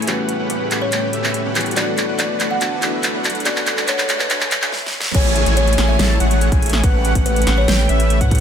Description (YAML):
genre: future bass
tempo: 142 BPM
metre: 4/4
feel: half-time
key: A major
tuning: A4 = 440 Hz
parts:
  - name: clear grand piano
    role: accompaniment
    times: 0.0-5.2 s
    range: D3 to F#4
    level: -28 LUFS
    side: left 3 dB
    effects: sidechain pumping, tape echo
  - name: ethereal airy pad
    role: sustained chords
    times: 0.0-8.4 s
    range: D2 to A4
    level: -29 LUFS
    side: left 2 dB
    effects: ensemble chorus, built-in reverb, sidechain pumping
  - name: dense compressed supersaw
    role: riff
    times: 0.0-8.4 s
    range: A3 to A5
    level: -23 LUFS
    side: equal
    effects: sidechain pumping, low-pass filter
  - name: dubstep drum kit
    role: drums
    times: 0.0-8.4 s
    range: crash cymbal, handclaps, hi-hat, ride cymbal, snare drum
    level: -20 LUFS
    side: right 1 dB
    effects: studio reverb
  - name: riser and downlifter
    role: sound effects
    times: 1.5-8.4 s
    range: none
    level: -29 LUFS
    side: equal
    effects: none
  - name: kalimba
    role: melody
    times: 0.1-8.4 s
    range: B4 to F#5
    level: -24 LUFS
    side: left 1 dB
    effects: sidechain pumping, tape echo
  - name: airy dreamy lead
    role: arpeggios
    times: 5.1-8.4 s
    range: E5 to A5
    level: -25 LUFS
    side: equal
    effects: chorus, sidechain pumping, tape echo
  - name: saturated sub bass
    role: bass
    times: 5.1-8.4 s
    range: A1 to A2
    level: -17 LUFS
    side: equal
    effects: sidechain pumping
  - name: electronic kick drum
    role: drums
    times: 5.1-8.4 s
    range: none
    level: -16 LUFS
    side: equal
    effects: studio reverb
room: light reverb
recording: high-pass filter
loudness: -15 LUFS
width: side -8 dB against mid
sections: 0.0-5.1 A section; 5.1-8.4 B section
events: build-up 0.0-5.1; drum fill 0.0-4.7, 4.7-5.1; filter sweep 0.0-5.1; stop 4.7-5.1; drop 5.1-8.4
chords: 0.1 A13; 1.8 D6; 3.5 Bm7; 5.1 Amaj7; 6.8 A13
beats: | 0.07 0.50 0.92 1.34 | 1.76 2.19 2.61 3.03 | 3.46 3.88 4.30 4.72 | 5.14 5.57 5.99 6.41 | 6.83 7.26 7.68 8.10